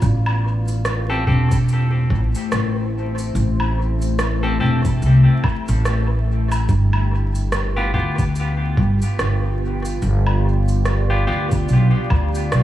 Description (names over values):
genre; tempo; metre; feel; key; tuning
ambient dub; 72 BPM; 4/4; swing 59% on 16ths; A minor; A4 = 440 Hz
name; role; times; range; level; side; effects
deep dark ambient pad; sustained chords; 0.0-12.6 s; A3 to G5; -27 LUFS; left 2 dB; chorus, built-in reverb
upright bass; bass; 0.0-12.6 s; E1 to D2; -18 LUFS; equal; none
electronic cabasa, woodblock and rim click; drums; 0.0-12.6 s; none; -28 LUFS; right 1 dB; dub echo
electronic kick drum; drums; 0.0-12.3 s; none; -21 LUFS; equal; none
semi-hollow electric guitar; stabs; 1.1-11.5 s; B3 to A4; -27 LUFS; left 1 dB; dub echo
room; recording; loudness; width
little or no reverb; vinyl crackle; -16 LUFS; side -13 dB against mid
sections
0.0-12.6 A section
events
none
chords
0.0 Am7; 6.7 G7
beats
| 0.02 0.85 1.69 2.52 | 3.35 4.19 5.02 5.85 | 6.69 7.52 8.35 9.19 | 10.02 10.85 11.69 12.52